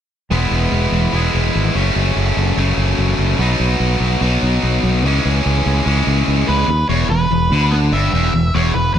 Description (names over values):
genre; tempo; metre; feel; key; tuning
rock; 146 BPM; 4/4; straight; E major; A4 = 440 Hz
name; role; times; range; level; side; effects
distorted electric guitar; riff; 0.3-9.0 s; E2 to E4; -17 LUFS; equal; overdrive
growling fingered electric bass; bass; 0.3-9.0 s; E1 to D#2; -17 LUFS; equal; overdrive
octave-fuzz lead guitar; melody; 6.5-9.0 s; B4 to F#5; -19 LUFS; right 1 dB; distortion
room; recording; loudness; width
light reverb; none; -14 LUFS; side -9 dB against mid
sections
0.3-6.9 A section; 6.9-9.0 B section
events
none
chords
0.3 E; 1.8 F#m; 3.4 B; 5.0 C#m; 6.9 E5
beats
| 0.31 0.72 1.13 1.54 | 1.96 2.37 2.78 3.19 | 3.60 4.02 4.43 4.84 | 5.25 5.66 6.07 6.49 | 6.90 7.31 7.72 8.13 | 8.55 8.96